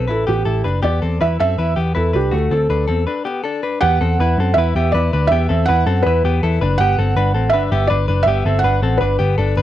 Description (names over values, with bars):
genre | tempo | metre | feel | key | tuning
jangly indie pop | 162 BPM | 4/4 | straight | E minor | A4 = 440 Hz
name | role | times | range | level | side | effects
felt-muted upright piano | melody | 0.0-9.5 s | G4 to F#5 | -19 LUFS | right 3 dB | slapback echo
direct-recorded clean electric guitar | arpeggios | 0.0-9.6 s | A3 to B4 | -21 LUFS | left 5 dB | slapback echo
vintage muted picked electric bass | bass | 0.0-9.6 s | F#1 to F#2 | -17 LUFS | equal | none
room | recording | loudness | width
light reverb | dry, close 1970s-style studio recording | -14 LUFS | side -12 dB against mid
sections
0.0-3.8 A section; 3.8-9.6 B section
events
break 3.1-3.8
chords
0.0 Asus2; 0.8 Em; 2.3 D5; 3.8 Emadd9; 6.8 G